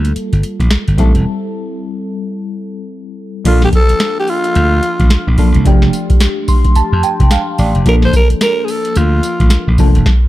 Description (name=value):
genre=R&B, new jack swing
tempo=109 BPM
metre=4/4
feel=swing 61% on 16ths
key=unclear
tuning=A4 = 440 Hz
part: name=FM electric piano with auto-pan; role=accompaniment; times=0.0-10.1 s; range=F3 to C6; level=-19 LUFS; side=equal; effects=phaser
part: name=slap bass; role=bass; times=0.0-10.0 s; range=E1 to F2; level=-13 LUFS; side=equal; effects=none
part: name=booming analog drum machine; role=drums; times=0.0-10.3 s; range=crash cymbal, hi-hat, kick drum, snare drum, tambourine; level=-12 LUFS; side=equal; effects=none
part: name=growling tenor saxophone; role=melody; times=3.5-9.8 s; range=F4 to C5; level=-17 LUFS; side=equal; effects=tape echo
room=little or no reverb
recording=dark, warm production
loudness=-10 LUFS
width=side -15 dB against mid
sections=0.0-3.5 A section; 3.5-10.3 B section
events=break 1.3-3.5; FM electric piano fill 6.2-7.9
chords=0.0 Gm9; 1.0 Am7; 3.5 Bbmaj7; 5.7 F69; 7.9 Bbmaj7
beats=0.15 0.70 | 1.25 1.80 2.35 2.90 | 3.45 4.00 4.55 5.11 | 5.66 6.21 6.76 7.31 | 7.86 8.41 8.96 9.51 | 10.06